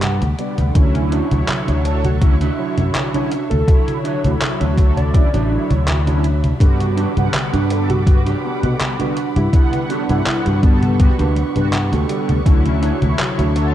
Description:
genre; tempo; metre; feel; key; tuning
vaporwave; 82 BPM; 4/4; swing 53% on 16ths; D major; A4 = 441 Hz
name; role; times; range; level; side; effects
muted studio string section; sustained chords; 0.0-13.7 s; G3 to D6; -31 LUFS; equal; none
mellow electric guitar; riff; 0.0-13.7 s; D4 to F#5; -25 LUFS; right 4 dB; analog chorus, analog delay
fretless electric bass; bass; 0.0-13.7 s; A1 to B2; -18 LUFS; equal; lush chorus
detuned 8-bit digital drum machine; drums; 0.0-13.7 s; congas, handclaps, hi-hat; -22 LUFS; equal; overdrive, vintage 12-bit sampler grit
mellow synth brass; accompaniment; 0.4-13.7 s; D3 to F#5; -23 LUFS; equal; analog chorus, analog delay
electronic kick drum; drums; 0.8-12.6 s; none; -12 LUFS; equal; vintage 12-bit sampler grit
warm velvety synth lead; melody; 2.0-11.4 s; B3 to D5; -27 LUFS; equal; chorus, tape echo
room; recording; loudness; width
digital ambience; dark, warm production; -14 LUFS; side -12 dB against mid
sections
0.8-13.7 A section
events
clean electric guitar fill 0.0-0.8, 11.4-12.5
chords
0.0 Gmaj7; 0.8 Dmaj9; 6.6 Gmaj7; 12.5 Dmaj9

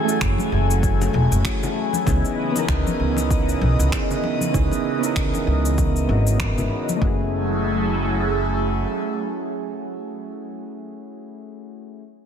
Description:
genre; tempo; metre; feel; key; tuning
sunset chillout; 97 BPM; 4/4; swing 58% on 16ths; F# dorian; A4 = 437 Hz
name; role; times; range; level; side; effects
soft electric-piano-like synth keys; accompaniment; 0.0-12.0 s; A3 to B4; -26 LUFS; moving between left 6 dB and right 9 dB; chorus, auto-pan, low-pass filter, digital delay
airy breathy pad; sustained chords; 0.0-10.3 s; C#3 to G#5; -26 LUFS; equal; chorus, phaser
electronic cabasa and finger snaps; drums; 0.1-7.0 s; none; -30 LUFS; left 1 dB; overdrive, soft clipping on snare
upright bass; bass; 0.2-8.8 s; E1 to C#2; -21 LUFS; equal; none
electronic kick drum; drums; 0.2-7.2 s; none; -24 LUFS; equal; overdrive
congas; percussion; 0.4-7.0 s; none; -31 LUFS; left 4 dB; none
room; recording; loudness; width
light reverb, digital ambience; dense, heavily limited modern master; -19 LUFS; side -8 dB against mid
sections
0.0-7.0 A section; 7.0-9.5 B section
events
filter sweep on synth keys 0.0-7.0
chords
0.0 F#m9; 2.1 C#m9; 7.0 F#m9

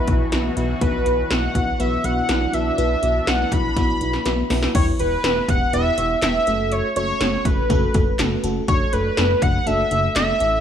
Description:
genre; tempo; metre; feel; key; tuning
synth-pop; 122 BPM; 4/4; straight; unclear; A4 = 437 Hz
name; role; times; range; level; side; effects
wide unison lead; melody; 0.0-10.6 s; B4 to B5; -22 LUFS; equal; none
sweeping resonant pad; sustained chords; 0.0-4.7 s; B2 to F#4; -30 LUFS; left 2 dB; chorus
FM electric piano with soft pad layer; accompaniment; 0.1-10.6 s; A3 to C#5; -25 LUFS; left 1 dB; chorus, phaser
chorused synth bass; bass; 0.1-10.6 s; E1 to B1; -24 LUFS; equal; none
80s electronic pad drums; drums; 0.1-10.5 s; crash cymbal, handclaps, hi-hat, kick drum, snare drum; -22 LUFS; equal; none
room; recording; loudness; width
light reverb; none; -17 LUFS; side -9 dB against mid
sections
0.0-4.7 A section; 4.7-10.6 B section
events
drum fill 3.8-4.7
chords
0.0 Bsus4; 4.7 Em; 6.5 F#m; 8.7 Dadd9/F#

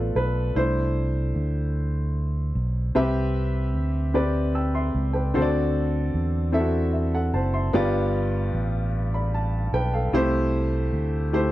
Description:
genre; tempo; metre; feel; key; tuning
slow gospel; 50 BPM (dotted quarters); 6/8; straight; C major; A4 = 439 Hz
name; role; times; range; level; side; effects
warm upright piano; accompaniment; 0.0-11.5 s; G2 to E6; -25 LUFS; left 1 dB; none
fingered electric bass; bass; 0.0-11.5 s; F#1 to E2; -24 LUFS; equal; none
room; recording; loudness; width
little or no reverb; none; -22 LUFS; side -15 dB against mid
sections
0.0-3.0 A section; 3.0-11.5 B section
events
upright piano solo 0.0-3.0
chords
0.0 G7 (rootless); 0.6 C6; 3.0 Cmaj7; 5.4 D7; 7.7 G7; 10.1 C6

